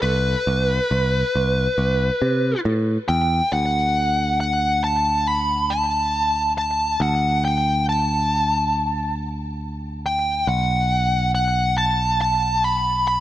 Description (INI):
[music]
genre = post-rock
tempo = 69 BPM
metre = 4/4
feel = straight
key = unclear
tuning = A4 = 441 Hz
[part]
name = fuzz lead guitar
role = melody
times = 0.0-13.2 s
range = B4 to B5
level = -20 LUFS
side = equal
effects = distortion, slapback echo
[part]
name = picked electric bass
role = bass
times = 0.0-13.2 s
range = B1 to C3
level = -23 LUFS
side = equal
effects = none
[sound]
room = light reverb, digital ambience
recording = none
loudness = -18 LUFS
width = side -13 dB against mid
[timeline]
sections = 0.0-3.5 A section; 3.5-13.2 B section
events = none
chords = 0.0 Cmaj7(no3); 3.5 D; 10.5 B5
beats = | 0.03 0.90 1.77 2.64 | 3.51 4.38 5.26 6.13 | 7.00 7.87 8.74 9.61 | 10.48 11.35 12.21 13.08